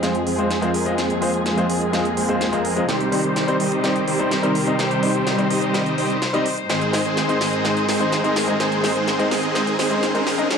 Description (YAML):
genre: EDM, festival progressive house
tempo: 126 BPM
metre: 4/4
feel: straight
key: unclear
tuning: A4 = 440 Hz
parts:
  - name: clear concert grand piano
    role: accompaniment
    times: 0.0-10.5 s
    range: G3 to Eb5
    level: -25 LUFS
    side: left 2 dB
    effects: ping-pong delay
  - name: muted chamber string section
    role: sustained chords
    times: 0.0-10.6 s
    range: F2 to Db5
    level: -26 LUFS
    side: equal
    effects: none
  - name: big supersaw lead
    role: riff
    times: 0.0-10.6 s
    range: Eb3 to Eb5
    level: -21 LUFS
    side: right 1 dB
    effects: low-pass filter, ping-pong delay
  - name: big-room dance drum kit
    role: drums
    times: 0.0-10.6 s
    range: hi-hat, snare drum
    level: -27 LUFS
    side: right 1 dB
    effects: high-pass filter on hats, high-pass filter on snare
  - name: riser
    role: sound effects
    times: 8.3-10.6 s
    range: none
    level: -31 LUFS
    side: equal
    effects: none
room: moderate lush hall reverb, RT60 1.8 s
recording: dark, warm production, high-pass filter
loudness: -18 LUFS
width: side -6 dB against mid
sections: 0.0-10.6 A section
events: build-up 0.0-10.6; drum fill 0.0-10.6; filter sweep on supersaw synth 0.0-10.6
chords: 0.0 Fm; 2.9 Cm; 6.7 Ab